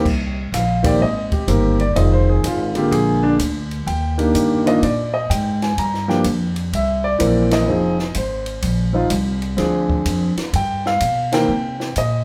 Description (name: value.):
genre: jazz piano trio.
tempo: 126 BPM.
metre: 4/4.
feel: swing 66% on 8ths.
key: C minor.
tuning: A4 = 441 Hz.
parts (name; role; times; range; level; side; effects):
warm grand piano; melody; 0.0-12.2 s; D3 to Bb5; -21 LUFS; equal; none.
upright bass; bass; 0.0-12.2 s; F1 to C3; -23 LUFS; equal; none.
compact cocktail drum kit; drums; 0.1-12.1 s; crash cymbal, hi-hat, kick drum, ride cymbal, snare drum; -29 LUFS; equal; none.
room: wet large studio reverb, RT60 1.1 s.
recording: band playing live in one room.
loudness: -19 LUFS.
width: mono.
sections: 0.0-12.2 A section.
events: band accent 7.4, 11.2.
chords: 0.0 Cm7; 2.0 Fm7; 2.9 Bb7; 3.9 Ebmaj7; 5.8 Gm7; 6.7 C7; 7.7 Fm7; 9.6 Dm7b5; 10.5 G7; 11.5 Cm7.